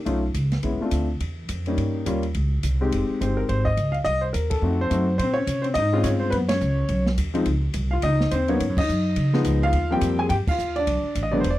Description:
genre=jazz piano trio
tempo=211 BPM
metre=4/4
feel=swing 60% on 8ths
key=Bb minor from 5.2 s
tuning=A4 = 438 Hz
part: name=warm upright piano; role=melody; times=0.1-11.6 s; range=D3 to Ab5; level=-23 LUFS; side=left 1 dB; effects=none
part: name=upright bass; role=bass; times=0.1-11.6 s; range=E1 to Db3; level=-24 LUFS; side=right 1 dB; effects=none
part: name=open jazz drum kit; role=drums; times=0.1-11.5 s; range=crash cymbal, hi-hat, kick drum, ride cymbal, snare drum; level=-32 LUFS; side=equal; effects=none
room=little or no reverb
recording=dry, close 1970s-style studio recording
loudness=-20 LUFS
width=side -15 dB against mid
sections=0.0-5.2 A section; 5.2-11.6 B section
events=band accent 4.5, 6.5, 8.7, 10.4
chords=0.1 B9; 0.6 Bbmaj9; 1.8 Gm7b5; 2.4 N.C.; 2.9 Fm9; 4.1 Cm7; 4.6 F7b9; 5.2 Bbm9; 6.3 Gb5; 6.9 Badd9; 7.5 Dbmaj7sus2; 8.6 Ab5; 9.2 Db9; 9.7 Eb69; 10.9 Bm7

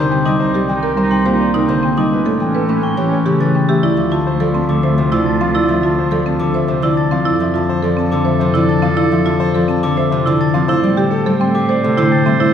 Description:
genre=classical, minimalist pattern music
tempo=105 BPM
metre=3/4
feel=straight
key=D minor from 3.8 s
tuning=A4 = 440 Hz
part: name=bright concert grand piano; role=melody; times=0.0-12.5 s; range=G4 to A5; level=-23 LUFS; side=left 4 dB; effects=none
part: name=bright clarinet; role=second line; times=0.0-12.5 s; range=C#4 to C5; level=-24 LUFS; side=right 2 dB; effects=none
part: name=Celtic harp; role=accompaniment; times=0.0-12.5 s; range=Bb2 to A3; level=-17 LUFS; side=left 3 dB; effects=none
part: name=glockenspiel with rubber mallets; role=arpeggios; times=0.0-12.3 s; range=Bb5 to A6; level=-24 LUFS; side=right 1 dB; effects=none
part: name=rich cello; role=bass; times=0.0-12.5 s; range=C2 to A2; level=-21 LUFS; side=right 2 dB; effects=none
part: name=buzzing marimba with medium hard mallets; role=arpeggios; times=0.1-12.5 s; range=C4 to C#5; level=-19 LUFS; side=right 4 dB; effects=none
room=wet scoring stage reverb, RT60 2.0 s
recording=heard from further back in the room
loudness=-13 LUFS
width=side -8 dB against mid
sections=0.0-3.8 A section; 3.8-12.5 B section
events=none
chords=0.4 Cm7; 2.1 A7; 3.8 Dm7; 7.3 Fmaj7; 10.7 Am7

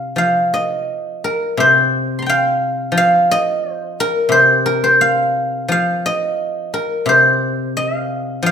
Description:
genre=chinese traditional, Chinese solo plucked strings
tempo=87 BPM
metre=2/4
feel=rubato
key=C yu mode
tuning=A4 = 440 Hz
part: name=guzheng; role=solo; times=0.0-8.5 s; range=C3 to C6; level=-14 LUFS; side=equal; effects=none
room=moderate recital hall reverb, RT60 1.4 s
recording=minimal, uncompressed stereo recording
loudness=-14 LUFS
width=side -7 dB against mid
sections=0.2-8.5 A section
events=none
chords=none

